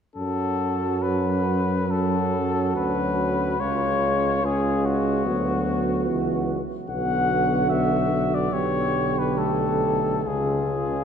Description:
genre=classical, hymn-like piece for brass band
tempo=71 BPM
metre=4/4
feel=uneven beats, rubato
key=F# minor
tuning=A4 = 440 Hz
part: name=warm cornet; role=melody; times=0.2-11.0 s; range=F#4 to F#5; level=-26 LUFS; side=left 5 dB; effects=none
part: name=mellow flugelhorn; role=second line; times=0.2-11.0 s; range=E#4 to G4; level=-29 LUFS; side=right 8 dB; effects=none
part: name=mellow trombone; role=accompaniment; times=0.2-11.0 s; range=C#3 to G#3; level=-29 LUFS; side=right 1 dB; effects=none
part: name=warm euphonium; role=accompaniment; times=0.2-11.0 s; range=G#3 to C#4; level=-28 LUFS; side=left 1 dB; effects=none
part: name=warm tuba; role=bass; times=0.2-11.0 s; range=B1 to F#2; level=-28 LUFS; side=equal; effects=none
room=wet church reverb, RT60 3.0 s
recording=dark, warm production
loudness=-21 LUFS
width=side -7 dB against mid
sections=0.2-11.0 A section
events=none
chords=0.2 F#m; 3.6 C#; 5.3 Bm/D; 6.9 Bm; 8.5 G/B; 10.3 C#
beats=| 0.16 1.03 1.89 2.76 | 3.60 4.44 5.27 6.09 | 6.90 7.71 8.54 9.39 | 10.28

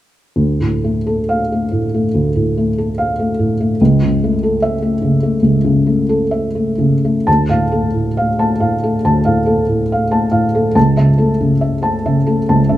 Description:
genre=neoclassical minimalist piano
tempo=69 BPM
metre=4/4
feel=uneven beats, rubato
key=D harmonic minor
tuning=A4 = 441 Hz
part: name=felt-muted upright piano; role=solo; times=0.4-12.8 s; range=C#2 to A5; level=-12 LUFS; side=equal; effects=none
room=moderate large studio reverb, RT60 1.2 s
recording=band playing live in one room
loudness=-13 LUFS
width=side -13 dB against mid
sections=0.4-7.3 A section; 7.3-12.8 B section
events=none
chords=0.4 Dm; 3.8 A/C#; 7.3 Dm; 10.8 A/C#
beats=| 0.38 1.27 2.13 2.97 | 3.79 4.61 5.44 6.33 | 7.27 8.16 9.04 9.91 | 10.76 11.61 12.46

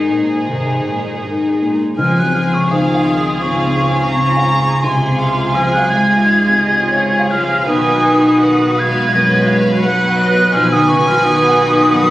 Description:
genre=cinematic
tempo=85 BPM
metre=4/4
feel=rubato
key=Db major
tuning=A4 = 435 Hz
part: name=rich studio violin section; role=melody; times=0.0-12.1 s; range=Ab4 to Cb5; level=-22 LUFS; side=equal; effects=none
part: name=warm symphonic violin section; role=second line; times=0.0-12.1 s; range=Eb4 to Bb5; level=-21 LUFS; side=equal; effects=none
part: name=dark symphonic viola section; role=accompaniment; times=0.0-12.1 s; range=C3 to Gb4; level=-23 LUFS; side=right 1 dB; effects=none
part: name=felt-muted upright piano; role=accompaniment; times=0.0-12.1 s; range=Cb2 to Gb5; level=-22 LUFS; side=equal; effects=none
part: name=concert harp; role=arpeggios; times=0.0-12.1 s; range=Ab2 to C6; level=-22 LUFS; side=left 3 dB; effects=none
part: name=warm symphonic cello section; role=bass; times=0.0-12.1 s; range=Ab2 to Ab3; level=-18 LUFS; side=right 1 dB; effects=none
part: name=hollow concert flute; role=second line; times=2.0-12.1 s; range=C6 to Ab6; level=-16 LUFS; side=equal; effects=none
part: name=dark symphonic double bass section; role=bass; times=2.0-12.1 s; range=Cb2 to Db2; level=-25 LUFS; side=right 1 dB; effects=none
room=moderate scoring stage reverb, RT60 1.5 s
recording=recorded on a phone in the room, studio reverb, compression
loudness=-11 LUFS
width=side -16 dB against mid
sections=0.0-2.0 A section; 2.0-12.1 B section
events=none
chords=0.0 Ab; 2.0 Dbmaj7; 7.7 Cb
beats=0.48 1.24 | 1.99 2.71 3.42 4.12 | 4.84 5.55 6.25 6.96 | 7.67 8.41 9.14 9.84 | 10.54 11.23 11.94

